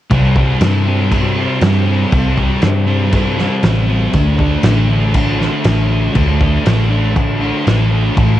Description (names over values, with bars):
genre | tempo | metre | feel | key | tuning
rock, shoegaze and dream pop | 119 BPM | 4/4 | straight | unclear | A4 = 440 Hz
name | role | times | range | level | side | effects
thick fuzz guitar | riff | 0.1-8.4 s | A2 to D4 | -17 LUFS | equal | distortion, wide subtle chorus, cassette tape
vintage muted picked electric bass | bass | 0.1-8.4 s | A1 to G2 | -14 LUFS | equal | none
loose indie drum kit | drums | 0.1-8.3 s | crash cymbal, kick drum, snare drum | -17 LUFS | equal | cassette tape
room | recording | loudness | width
studio reverb | home recording on cassette | -12 LUFS | side -13 dB against mid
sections
0.1-8.4 A section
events
none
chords
0.1 C5; 4.1 D5